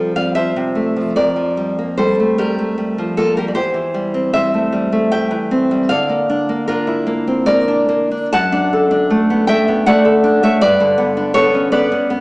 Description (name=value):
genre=romantic piece for solo classical guitar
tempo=76 BPM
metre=3/4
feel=uneven beats, rubato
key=D major from 8.3 s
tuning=A4 = 440 Hz
part: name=nylon-string guitar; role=solo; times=0.0-12.2 s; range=E2 to A5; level=-13 LUFS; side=equal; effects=none
room=wet large studio reverb, RT60 1.2 s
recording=band playing live in one room, small speaker sound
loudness=-13 LUFS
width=side -24 dB against mid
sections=0.0-12.2 A section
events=none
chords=0.0 F; 1.2 Gm7/F; 3.6 C/E; 5.9 Bb/D; 8.3 D/F#; 10.6 G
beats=0.34 | 1.15 1.97 2.78 | 3.55 4.33 5.11 | 5.89 6.67 7.45 | 8.30 9.09 9.85 | 10.60 11.33 12.09